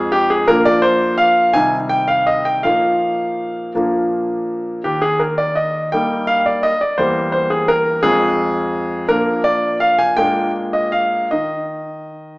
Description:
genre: classical-period piano sonatina.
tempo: 56 BPM (dotted quarters).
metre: 6/8.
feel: rubato.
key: unclear.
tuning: A4 = 440 Hz.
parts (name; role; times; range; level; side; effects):
clear concert grand piano; solo; 0.0-12.4 s; Eb2 to Ab5; -14 LUFS; equal; none.
room: wet recital hall reverb, RT60 1.6 s.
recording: small speaker sound.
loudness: -14 LUFS.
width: side -24 dB against mid.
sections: 0.0-12.4 A section.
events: none.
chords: 0.5 Bb; 1.5 Cm; 2.6 Bbsus4; 3.8 Bb; 4.8 Eb; 7.0 C7b13/E; 8.0 Fm; 9.1 Bb; 10.2 Bb7; 11.3 N.C..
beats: | 0.47 1.54 | 2.64 3.75 | 4.85 5.92 | 6.99 8.04 | 9.09 10.18 | 11.31.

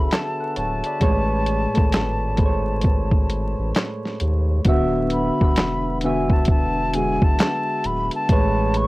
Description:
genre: lo-fi hip hop.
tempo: 66 BPM.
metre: 4/4.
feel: swing 64% on 16ths.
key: unclear.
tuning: A4 = 439 Hz.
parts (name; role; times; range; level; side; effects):
breathy mellow silver concert flute; melody; 0.0-8.9 s; G#5 to C#6; -26 LUFS; left 2 dB; low-pass filter.
soft electric-piano-like synth keys; accompaniment; 0.0-8.9 s; A2 to B5; -23 LUFS; equal; chorus, cassette tape, low-pass filter.
saturated sub bass; bass; 0.0-8.9 s; D1 to D#2; -25 LUFS; equal; transformer saturation.
lo-fi sampler-style drum kit; drums; 0.1-8.9 s; handclaps, hi-hat, kick drum, snare drum; -19 LUFS; equal; none.
room: little or no reverb.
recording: dry, gritty hardware recording, vinyl crackle.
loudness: -18 LUFS.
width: side -20 dB against mid.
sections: 0.0-4.7 A section; 4.7-8.9 B section.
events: none.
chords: 0.0 D69; 1.0 Amaj9; 4.7 D69; 8.3 Amaj9.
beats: 0.11 | 1.02 1.93 2.83 3.74 | 4.65 5.56 6.47 7.38 | 8.29.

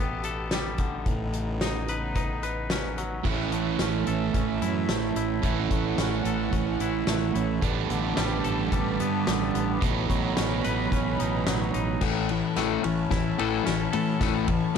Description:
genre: post-rock.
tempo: 110 BPM.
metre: 4/4.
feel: straight.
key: A lydian.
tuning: A4 = 440 Hz.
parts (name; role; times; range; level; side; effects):
warm chamber string section; sustained chords; 0.0-14.8 s; B2 to B5; -36 LUFS; left 2 dB; none.
twangy electric guitar; arpeggios; 0.0-14.8 s; A2 to B4; -33 LUFS; left 4 dB; digital delay.
fuzz fingered electric bass; bass; 0.0-14.8 s; A1 to A2; -30 LUFS; equal; overdrive.
loose indie drum kit; drums; 0.2-14.8 s; crash cymbal, hi-hat, kick drum, ride cymbal, snare drum; -30 LUFS; left 1 dB; none.
distorted electric guitar; riff; 3.2-12.0 s; G2 to E4; -28 LUFS; right 14 dB; distortion.
overdriven electric guitar; riff; 12.0-14.8 s; A2 to A3; -26 LUFS; left 12 dB; none.
room: little or no reverb.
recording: dark, warm production.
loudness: -24 LUFS.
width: side -7 dB against mid.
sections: 0.0-3.2 A section; 3.2-12.0 B section; 12.0-14.8 C section.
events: build-up 12.0-14.8; drum fill 12.0-14.8.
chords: 0.0 Gadd9/A; 1.1 Badd9/A; 3.2 A; 7.6 Gadd9/A; 9.8 Badd9/A; 12.0 A.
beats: 0.52 | 1.06 1.61 2.15 2.70 | 3.25 3.80 4.34 4.89 | 5.44 5.99 6.53 7.08 | 7.63 8.18 8.73 9.28 | 9.82 10.37 10.92 11.47 | 12.02 12.57 13.11 13.66 | 14.21 14.76.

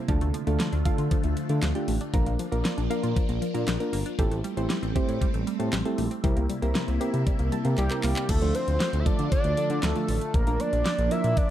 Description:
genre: synth-pop.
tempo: 117 BPM.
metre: 4/4.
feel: straight.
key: D minor.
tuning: A4 = 440 Hz.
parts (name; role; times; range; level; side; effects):
phased string machine; sustained chords; 0.0-11.5 s; C3 to F4; -32 LUFS; equal; ensemble chorus, phaser.
analog pluck; arpeggios; 0.0-8.3 s; F3 to F5; -35 LUFS; left 2 dB; chorus, tape echo.
soft electric-piano-like synth keys; accompaniment; 0.1-11.4 s; F3 to A5; -32 LUFS; right 1 dB; chorus.
smooth synth bass; bass; 0.1-11.3 s; G1 to D3; -27 LUFS; equal; none.
pop drum kit; drums; 0.1-11.5 s; crash cymbal, handclaps, hi-hat, kick drum, snare drum; -28 LUFS; equal; none.
fat analog lead; melody; 7.8-11.5 s; G4 to E5; -28 LUFS; equal; none.
room: light reverb.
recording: dark, warm production.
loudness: -23 LUFS.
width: side -12 dB against mid.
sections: 0.1-8.3 A section; 8.3-11.5 B section.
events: synth keys fill 7.3-8.3; drum fill 7.8-8.3.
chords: 0.1 Dm; 2.1 Bb; 4.2 Am7; 6.2 C7; 8.3 Dm; 10.3 Bb.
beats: | 0.09 0.60 1.11 1.62 | 2.14 2.65 3.16 3.67 | 4.19 4.70 5.21 5.73 | 6.24 6.75 7.26 7.78 | 8.29 8.80 9.32 9.83 | 10.34 10.85 11.37.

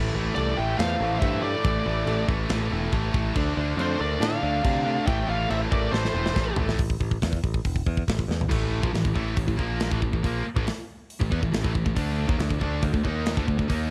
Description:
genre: heavy metal.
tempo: 140 BPM.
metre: 4/4.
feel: straight.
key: unclear.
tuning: A4 = 440 Hz.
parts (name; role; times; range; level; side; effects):
distorted electric guitar; riff; 0.0-13.9 s; A2 to D#4; -35 LUFS; equal; overdrive.
overdriven electric guitar; riff; 0.0-13.9 s; A2 to D#4; -35 LUFS; equal; none.
scooped high-gain guitar; riff; 0.0-13.9 s; A2 to D#4; -36 LUFS; equal; distortion.
modern bright picked electric bass; bass; 0.0-13.9 s; E1 to C3; -30 LUFS; equal; none.
high-gain lead guitar; melody; 0.3-6.5 s; C5 to G5; -31 LUFS; equal; distortion, slapback echo.
high-gain lead guitar; second line; 0.4-6.5 s; A4 to E5; -39 LUFS; equal; distortion.
tight metal drum kit; drums; 0.4-13.8 s; china cymbal, crash cymbal, hi-hat, kick drum, snare drum, toms; -30 LUFS; equal; none.
room: small room reverb.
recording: dark, warm production.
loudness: -25 LUFS.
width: mono.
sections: 0.0-6.8 A section; 6.8-8.5 B section; 8.5-13.9 C section.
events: half time 0.0-6.8; drum fill 5.9-6.8, 8.3.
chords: 0.0 A5; 3.4 Dm; 5.1 A5; 12.0 D5.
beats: 0.36 0.79 1.22 | 1.64 2.07 2.50 2.93 | 3.36 3.78 4.21 4.64 | 5.07 5.50 5.92 6.35 | 6.78 7.21 7.64 8.07 | 8.50 8.93 9.37 9.80 | 10.23 10.66 11.10 11.53 | 11.96 12.39 12.83 13.26 | 13.69.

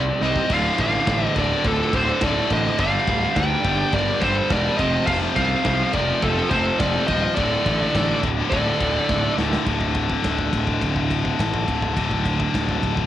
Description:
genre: heavy metal.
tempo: 105 BPM.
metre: 4/4.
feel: straight.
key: D minor.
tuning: A4 = 440 Hz.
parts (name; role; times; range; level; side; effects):
high-gain lead guitar; melody; 0.0-9.3 s; A4 to G5; -23 LUFS; right 1 dB; distortion.
high-gain lead guitar; second line; 0.0-9.3 s; F4 to D5; -32 LUFS; right 3 dB; distortion, cassette tape.
heavy high-gain guitar; riff; 0.0-13.1 s; D2 to C4; -25 LUFS; left 7 dB; distortion, cassette tape.
high-gain distorted guitar; riff; 0.0-13.1 s; D2 to C4; -30 LUFS; right 8 dB; distortion, cassette tape.
tight distorted guitar; riff; 0.0-9.7 s; D2 to C4; -29 LUFS; right 1 dB; distortion, cassette tape.
fuzz picked electric bass; bass; 0.0-13.1 s; D1 to D2; -24 LUFS; equal; overdrive.
big rock drum kit; drums; 0.2-13.1 s; crash cymbal, kick drum, ride cymbal, snare drum; -27 LUFS; equal; cassette tape.
room: small room ambience.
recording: home recording on cassette.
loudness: -18 LUFS.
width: side -12 dB against mid.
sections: 0.0-9.7 A section; 9.7-13.1 B section.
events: drum fill 0.2, 9.1-9.7.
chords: 0.0 C5; 0.5 Dm; 2.8 G5; 4.8 F5; 7.4 D5.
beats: | 0.51 1.08 1.65 2.22 | 2.79 3.37 3.94 4.51 | 5.08 5.66 6.23 6.80 | 7.38 7.95 8.52 9.10 | 9.67 10.25 10.82 11.40 | 11.97 12.55.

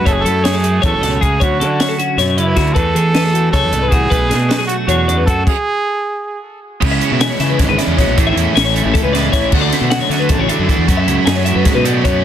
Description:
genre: math rock and midwest emo.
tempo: 310 BPM (eighths).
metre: 7/8.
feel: straight.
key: unclear.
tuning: A4 = 440 Hz.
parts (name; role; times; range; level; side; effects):
clear trumpet; melody; 0.0-6.4 s; E4 to A4; -19 LUFS; right 3 dB; none.
twelve-string electric guitar; accompaniment; 0.0-12.2 s; E2 to A4; -21 LUFS; right 6 dB; lush chorus.
twelve-string electric guitar; arpeggios; 0.0-12.2 s; F#4 to G#5; -19 LUFS; left 7 dB; none.
fuzz fingered electric bass; bass; 0.0-12.2 s; F#1 to E3; -18 LUFS; equal; overdrive.
compact cocktail drum kit; drums; 0.1-12.1 s; crash cymbal, hi-hat, kick drum, snare drum; -17 LUFS; equal; none.
biting overdriven guitar; riff; 6.8-12.2 s; A2 to F#4; -18 LUFS; right 1 dB; none.
room: little or no reverb.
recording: dense, heavily limited modern master.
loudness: -12 LUFS.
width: side -10 dB against mid.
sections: 0.0-6.8 A section; 6.8-12.2 B section.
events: stop 5.5-6.8.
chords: 0.1 F#m9; 1.4 Dmaj9; 2.8 E9sus4; 4.1 Bm7; 5.5 N.C.; 6.8 C#m7; 8.2 Amaj7; 9.5 Dmaj9; 10.9 F#m11.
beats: | 0.06 0.25 0.45 0.64 0.83 1.02 1.22 | 1.41 1.60 1.80 1.99 2.18 2.38 2.57 | 2.76 2.95 3.15 3.34 3.53 3.73 3.92 | 4.11 4.31 4.50 4.69 4.89 5.08 5.27 | 5.47 5.66 5.85 6.05 6.24 6.43 6.63 | 6.82 7.01 7.21 7.40 7.59 7.79 7.98 | 8.17 8.36 8.56 8.75 8.94 9.14 9.33 | 9.52 9.72 9.91 10.10 10.30 10.49 10.69 | 10.88 11.07 11.27 11.46 11.65 11.85 12.04 | 12.23.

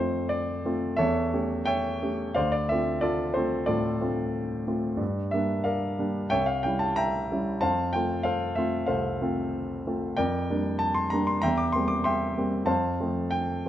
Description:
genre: classical, romantic character piece for solo piano.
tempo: 93 BPM.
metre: 4/4.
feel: uneven beats, rubato.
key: F major.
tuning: A4 = 444 Hz.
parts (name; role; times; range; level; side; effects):
warm grand piano; solo; 0.0-13.7 s; C2 to D6; -25 LUFS; equal; none.
room: light reverb.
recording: none.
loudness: -25 LUFS.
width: side -12 dB against mid.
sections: 0.0-13.7 A section.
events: none.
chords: 0.0 F; 1.0 A7/E; 2.4 Dm7; 5.0 Gm7; 6.3 C7b9; 7.6 F; 10.2 Gm7/F; 11.4 C7/E; 12.7 F.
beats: 0.32 0.99 1.68 | 2.37 3.03 3.68 4.34 | 5.01 5.67 6.32 6.98 | 7.62 8.26 8.89 9.54 | 10.18 10.82 11.45 12.07 | 12.70 13.34.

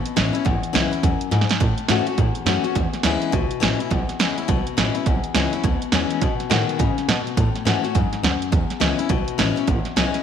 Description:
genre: rockabilly.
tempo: 208 BPM.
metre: 4/4.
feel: swing 61% on 8ths.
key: E mixolydian.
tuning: A4 = 440 Hz.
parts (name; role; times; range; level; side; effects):
picked steel-string acoustic guitar; accompaniment; 0.0-10.2 s; E2 to F#4; -23 LUFS; left 8 dB; none.
upright bass; bass; 0.0-10.2 s; G#1 to B2; -25 LUFS; right 1 dB; none.
punchy analog drum machine; drums; 0.1-10.2 s; hi-hat, kick drum, snare drum; -22 LUFS; right 4 dB; none.
room: moderate echo chamber reverb, RT60 1.9 s, studio ambience.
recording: 1960s-style stereo.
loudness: -18 LUFS.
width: side -8 dB against mid.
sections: 0.0-10.2 A section.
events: drum fill 1.3.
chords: 0.0 E6; 1.6 A6; 2.8 E6; 6.2 B6; 7.4 A6; 8.5 E6.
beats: 0.16 | 0.45 0.74 1.03 1.32 | 1.60 1.89 2.18 2.47 | 2.76 3.04 3.33 3.62 | 3.91 4.20 4.48 4.77 | 5.06 5.35 5.64 5.92 | 6.21 6.50 6.79 7.08 | 7.37 7.66 7.94 8.23 | 8.52 8.81 9.10 9.38 | 9.67 9.96.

